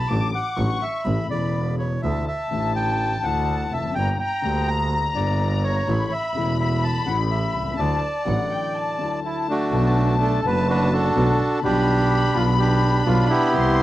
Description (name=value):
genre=tango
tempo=125 BPM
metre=4/4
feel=rubato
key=D major, B minor from 9.7 s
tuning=A4 = 441 Hz
part: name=bandoneon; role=melody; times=0.0-13.8 s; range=A3 to Bb5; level=-24 LUFS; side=right 2 dB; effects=cassette tape
part: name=warm symphonic violin section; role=second line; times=0.0-13.8 s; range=F#5 to D6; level=-28 LUFS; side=left 6 dB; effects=cassette tape
part: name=dark concert grand piano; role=accompaniment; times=0.0-13.8 s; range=E1 to G4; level=-29 LUFS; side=left 6 dB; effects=cassette tape
part: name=clear double bass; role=bass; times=0.0-13.8 s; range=E1 to D2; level=-22 LUFS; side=right 1 dB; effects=none
room=little or no reverb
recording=home recording on cassette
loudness=-19 LUFS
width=side -15 dB against mid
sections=0.0-9.7 A section; 9.7-13.8 B section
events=none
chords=0.1 D/A; 1.1 A; 2.0 Dsus2; 4.0 Gm; 5.9 A; 7.8 Dadd9; 9.7 Bm7; 11.6 G7/B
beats=| 0.10 0.58 1.06 1.55 | 2.03 2.52 3.00 3.48 | 3.96 4.44 4.92 5.40 | 5.88 6.35 6.83 7.31 | 7.79 8.27 8.75 9.24 | 9.72 10.20 10.68 11.15 | 11.63 12.11 12.58 13.05 | 13.53